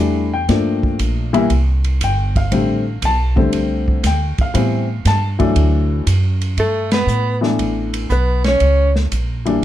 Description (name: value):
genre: jazz, small-group swing and bop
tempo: 118 BPM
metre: 4/4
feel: swing 68% on 8ths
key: G major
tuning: A4 = 441 Hz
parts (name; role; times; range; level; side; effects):
- dark baby grand piano; accompaniment; 0.0-9.6 s; D3 to B5; -18 LUFS; left 3 dB; none
- upright bass; bass; 0.0-9.6 s; G1 to A2; -17 LUFS; right 1 dB; none
- open jazz drum kit; drums; 0.5-9.5 s; hi-hat, kick drum, ride cymbal, snare drum; -23 LUFS; right 1 dB; none
- hollow-body jazz guitar; melody; 6.6-8.9 s; A4 to C#5; -19 LUFS; left 1 dB; none
- edgy tenor saxophone; second line; 6.6-8.9 s; A3 to C#4; -22 LUFS; right 6 dB; none
room: light reverb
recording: dark, warm production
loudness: -14 LUFS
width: side -12 dB against mid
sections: 0.0-6.6 A section; 6.6-9.6 B section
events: band accent 6.8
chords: 0.5 Gm7; 1.5 C5; 2.5 F6; 4.5 Am7; 5.6 D; 6.6 G69; 8.6 C#m